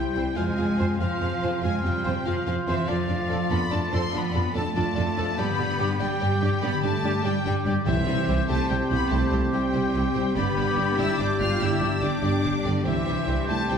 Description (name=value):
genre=cinematic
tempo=96 BPM (dotted quarters)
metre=12/8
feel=straight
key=C major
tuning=A4 = 441 Hz
part: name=rich studio violin section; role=melody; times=0.0-13.8 s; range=D5 to F6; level=-32 LUFS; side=left 3 dB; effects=none
part: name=mellow hollow silver concert flute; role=second line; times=0.0-13.8 s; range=F6 to A6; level=-34 LUFS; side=left 2 dB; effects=none
part: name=warm clarinet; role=second line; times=0.0-13.8 s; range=E4 to G4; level=-34 LUFS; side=equal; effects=none
part: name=warm oboe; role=second line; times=0.0-13.8 s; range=C5 to D5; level=-38 LUFS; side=right 2 dB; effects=none
part: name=warm symphonic violin section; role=second line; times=0.0-13.8 s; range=G4 to G5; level=-37 LUFS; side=left 2 dB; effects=none
part: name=warm symphonic viola section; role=accompaniment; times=0.0-13.8 s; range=G3 to F4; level=-33 LUFS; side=right 1 dB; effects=none
part: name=concert harp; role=arpeggios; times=0.0-13.8 s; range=F2 to G5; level=-32 LUFS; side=left 5 dB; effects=none
part: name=rich symphonic cello section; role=bass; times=0.0-13.8 s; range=D3 to F4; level=-30 LUFS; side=right 2 dB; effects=none
part: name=rich symphonic double bass section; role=bass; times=0.0-13.8 s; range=G1 to G2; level=-28 LUFS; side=right 2 dB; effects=none
part: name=mellow French horn section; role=sustained chords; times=0.2-13.8 s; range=F3 to D4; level=-32 LUFS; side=left 2 dB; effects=none
part: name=mellow trumpet section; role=stabs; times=0.2-13.8 s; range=G4 to C5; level=-34 LUFS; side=left 1 dB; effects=none
part: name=timpani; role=percussion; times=7.9-8.4 s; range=C3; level=-31 LUFS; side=equal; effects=none
room=wet scoring stage reverb, RT60 1.5 s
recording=heard from further back in the room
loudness=-22 LUFS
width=side -7 dB against mid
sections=0.0-13.8 A section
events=none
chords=0.4 Fm; 2.9 Dm/F; 5.4 G; 7.9 C; 10.4 G; 12.9 C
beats=| 0.36 1.00 1.63 2.26 | 2.88 3.51 4.13 4.75 | 5.38 6.00 6.62 7.25 | 7.87 8.49 9.12 9.74 | 10.37 10.99 11.61 12.24 | 12.86 13.49